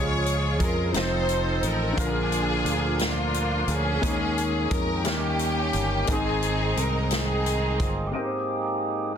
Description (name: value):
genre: slow gospel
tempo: 58 BPM (dotted quarters)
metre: 6/8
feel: straight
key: Ab major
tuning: A4 = 443 Hz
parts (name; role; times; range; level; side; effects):
- clear studio string section; melody; 0.0-8.1 s; Bb3 to Db5; -27 LUFS; equal; none
- clear upright piano; accompaniment; 0.0-9.2 s; Ab2 to C5; -31 LUFS; left 3 dB; none
- percussive tonewheel organ; sustained chords; 0.0-9.2 s; D3 to C5; -30 LUFS; right 2 dB; fast rotary speaker, overdrive
- fingered electric bass; bass; 0.0-8.1 s; F1 to F2; -28 LUFS; equal; none
- swinging big-band drum kit; drums; 0.3-8.0 s; hi-hat, kick drum, snare drum; -29 LUFS; equal; none
room: light reverb, studio ambience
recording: dense, heavily limited modern master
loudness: -22 LUFS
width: side -8 dB against mid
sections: 0.0-8.1 A section; 8.1-9.2 B section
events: tonewheel organ solo 8.1-9.2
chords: 0.0 Db; 0.9 F7; 2.0 Bb; 4.0 Eb7sus4; 5.1 Eb7; 6.1 Ab; 8.1 Abmaj7